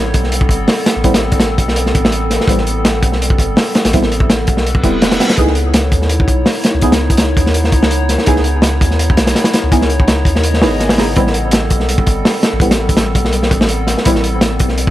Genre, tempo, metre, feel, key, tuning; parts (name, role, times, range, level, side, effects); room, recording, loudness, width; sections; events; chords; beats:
drum and bass, jungle; 166 BPM; 4/4; swing 54% on 16ths; A4 = 440 Hz
warbly tape-like pad; sustained chords; 0.0-14.9 s; C#3 to D#5; -20 LUFS; left 1 dB; chorus, built-in reverb
soft dub sub bass; bass; 0.0-14.9 s; E1 to D#2; -17 LUFS; equal
crunchy breakbeat drum kit; drums; 0.1-14.9 s; hi-hat, kick drum, snare drum; -13 LUFS; equal
deep mellow chord stab; stabs; 1.0-14.2 s; G3 to G#4; -19 LUFS; right 1 dB; chorus, phaser, dub echo
reverse cymbal; sound effects; 4.8-5.4 s; -23 LUFS; left 1 dB
light reverb, small room ambience; vinyl crackle; -11 LUFS; side -14 dB against mid
0.0-14.9 A section
reverse cymbal 4.8-5.4
0.0 Am9; 5.4 C#m9; 11.2 Am9
0.32 0.68 | 1.04 1.40 1.76 2.12 | 2.49 2.85 3.21 3.57 | 3.93 4.29 4.66 5.02 | 5.38 5.74 6.10 6.46 | 6.82 7.18 7.55 7.91 | 8.27 8.63 8.99 9.35 | 9.71 10.08 10.44 10.80 | 11.16 11.52 11.88 12.24 | 12.61 12.97 13.33 13.69 | 14.05 14.41 14.78